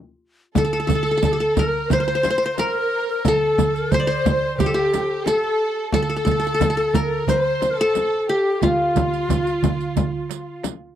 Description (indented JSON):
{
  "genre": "Turkish makam ensemble",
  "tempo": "89 BPM",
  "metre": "4/4",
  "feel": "straight",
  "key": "unclear",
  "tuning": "A4 = 440 Hz",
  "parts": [
    { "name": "qanun", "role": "melody", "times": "0.6-10.6 s", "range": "F4 to D5", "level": "-21 LUFS", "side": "left 2 dB", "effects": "none" },
    { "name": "breathy ney", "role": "second line", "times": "0.6-10.6 s", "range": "F4 to C5", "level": "-26 LUFS", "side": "left 3 dB", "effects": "none" },
    { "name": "rich studio violin section", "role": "second line", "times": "0.6-10.6 s", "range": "F4 to C5", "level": "-28 LUFS", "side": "right 5 dB", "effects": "none" },
    { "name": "darbuka", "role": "percussion", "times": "0.6-10.8 s", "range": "none", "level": "-26 LUFS", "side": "right 6 dB", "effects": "none" },
    { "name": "frame drum", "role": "percussion", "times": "0.6-10.8 s", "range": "none", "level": "-24 LUFS", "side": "left 3 dB", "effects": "none" },
    { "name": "riq", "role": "percussion", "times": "0.6-10.8 s", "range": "none", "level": "-28 LUFS", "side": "right 23 dB", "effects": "none" }
  ],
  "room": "little or no reverb",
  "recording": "dry, close 1970s-style studio recording",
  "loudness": "-18 LUFS",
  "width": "side -10 dB against mid",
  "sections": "0.6-11.0 A section",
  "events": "none",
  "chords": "none",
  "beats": "| 0.56 1.23 1.91 2.58 | 3.25 3.92 4.59 5.27 | 5.94 6.61 7.29 7.96 | 8.63 9.30 9.98 10.65"
}